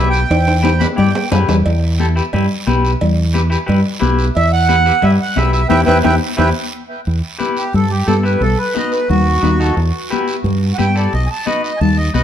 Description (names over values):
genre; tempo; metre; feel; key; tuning
latin, cumbia; 177 BPM; 4/4; straight; E minor, E harmonic minor from 7.1 s; A4 = 439 Hz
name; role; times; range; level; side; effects
accordion; melody; 0.0-1.3, 4.4-12.2 s; F#4 to B5; -18 LUFS; right 2 dB; tape echo
clean electric guitar; accompaniment; 0.0-12.2 s; D#4 to D5; -21 LUFS; left 3 dB; none
fingered electric bass; bass; 0.0-12.2 s; B1 to G2; -15 LUFS; right 1 dB; none
guiro; percussion; 0.1-12.2 s; none; -30 LUFS; right 5 dB; none
congas; percussion; 0.3-12.2 s; none; -20 LUFS; left 5 dB; none
cowbell and timbales; percussion; 0.3-6.5 s; none; -23 LUFS; right 3 dB; none
room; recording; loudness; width
moderate large studio reverb, RT60 0.9 s; dark, warm production; -12 LUFS; side -10 dB against mid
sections
0.0-7.1 A section; 7.1-12.2 B section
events
drum fill 0.3-1.7, 5.7-7.1; band accent 5.7-7.1; accordion solo 7.1-12.2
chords
0.0 Em; 8.4 B7; 9.8 Em; 11.1 B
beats
| 0.30 0.64 0.98 1.32 | 1.66 1.99 2.33 2.67 | 3.01 3.35 3.69 4.02 | 4.36 4.70 5.04 5.38 | 5.71 6.05 6.39 6.73 | 7.07 7.41 7.75 8.08 | 8.42 8.76 9.10 9.44 | 9.78 10.12 10.45 10.79 | 11.13 11.47 11.81 12.15